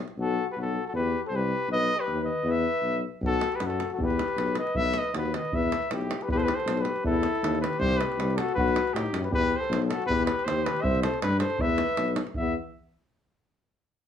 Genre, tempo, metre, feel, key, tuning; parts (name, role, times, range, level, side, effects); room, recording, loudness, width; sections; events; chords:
balkan folk, Balkan brass band; 158 BPM; 2/4; swing 54% on 16ths; E harmonic minor; A4 = 440 Hz
davul; percussion; 0.1, 3.2-12.5 s; -33 LUFS; right 3 dB
mellow trumpet; melody; 0.2-12.5 s; G4 to E5; -29 LUFS; left 1 dB
mellow flugelhorn; second line; 0.2-12.6 s; B3 to C5; -32 LUFS; left 6 dB
mellow tuba; bass; 0.2-12.5 s; B1 to A2; -29 LUFS; left 2 dB
light reverb; small room reverb; -24 LUFS; side -8 dB against mid
0.2-6.3 A section; 6.3-12.4 B section
0.2 Gmaj9/B (rootless); 0.9 Em; 1.7 B; 2.5 E5; 3.2 B5; 4.0 Em; 4.7 B; 5.5 E5; 7.8 C5; 8.6 B5; 9.3 E5; 10.8 C5; 11.6 E5